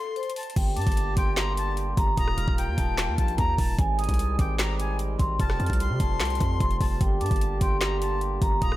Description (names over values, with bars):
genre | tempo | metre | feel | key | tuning
hip hop, trap | 149 BPM | 4/4 | half-time | G minor | A4 = 440 Hz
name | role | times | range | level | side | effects
vibraphone with soft mallets | melody | 0.0-8.8 s | A4 to F6 | -31 LUFS | equal | tape echo
bright reedy jazz flute | second line | 0.0-8.8 s | G5 to C6 | -35 LUFS | left 4 dB | tape echo
trap drum kit | drums | 0.2-8.8 s | crash cymbal, handclaps, hi-hat, kick drum, rim click, snare drum | -26 LUFS | equal | none
mellow French horn section | sustained chords | 0.6-8.8 s | D3 to G4 | -34 LUFS | right 3 dB | none
hard-hitting 808-style bass | bass | 0.6-8.8 s | Eb1 to C3 | -27 LUFS | equal | none
room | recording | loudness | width
light reverb | none | -23 LUFS | side -16 dB against mid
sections
0.6-8.8 A section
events
break 0.0-0.6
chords
0.0 F (rootless); 0.6 Gm; 2.2 Ebadd9; 3.8 Abmaj7; 5.4 Fadd9; 7.0 Gm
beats
0.16 | 0.56 0.97 1.37 1.77 | 2.17 2.58 2.98 3.38 | 3.79 4.19 4.59 4.99 | 5.40 5.80 6.20 6.60 | 7.01 7.41 7.81 8.21 | 8.62